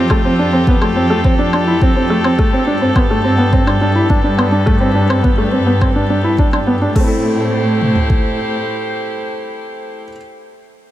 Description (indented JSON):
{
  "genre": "piano and strings electronica",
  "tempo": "105 BPM",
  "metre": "4/4",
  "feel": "straight",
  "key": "A minor",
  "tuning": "A4 = 440 Hz",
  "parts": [
    { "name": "warm string quartet", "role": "sustained chords", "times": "0.0-10.0 s", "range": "F3 to C5", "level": "-20 LUFS", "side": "left 1 dB", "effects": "sidechain pumping" },
    { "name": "felt-muted upright piano", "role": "riff", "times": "0.0-10.1 s", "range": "A3 to A4", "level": "-16 LUFS", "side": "equal", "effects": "tape echo" },
    { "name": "warm chamber cello section", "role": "bass", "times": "0.0-8.6 s", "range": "F2 to A2", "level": "-18 LUFS", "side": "right 1 dB", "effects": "sidechain pumping" },
    { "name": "deep house drum kit", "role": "drums", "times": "0.1-8.2 s", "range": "kick drum, toms", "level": "-15 LUFS", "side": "equal", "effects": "overdrive" },
    { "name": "electronic woodblock and crash cymbal", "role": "drums", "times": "0.1-7.1 s", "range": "none", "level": "-26 LUFS", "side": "left 2 dB", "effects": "none" }
  ],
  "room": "light reverb, small room ambience",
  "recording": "none",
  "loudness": "-12 LUFS",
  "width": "side -13 dB against mid",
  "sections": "0.0-7.0 A section; 7.0-9.2 B section",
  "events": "none",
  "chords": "0.0 Fadd9; 2.4 Gadd9; 7.0 Am7"
}